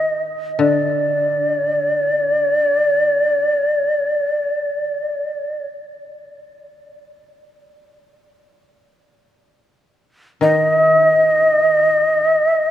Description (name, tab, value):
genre	japanese traditional, Japanese chamber music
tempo	free time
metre	none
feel	none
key	unclear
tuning	A4 = 440 Hz
part	breathy mellow shakuhachi	melody	0.0-12.7 s	D5 to Eb5	-15 LUFS	equal	none
part	koto	accompaniment	0.0-12.7 s	D3 to Eb3	-23 LUFS	left 5 dB	none
room	moderate cathedral reverb, RT60 6.4 s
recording	none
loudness	-14 LUFS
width	side -11 dB against mid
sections	0.0-12.7 A section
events	none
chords	none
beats	free time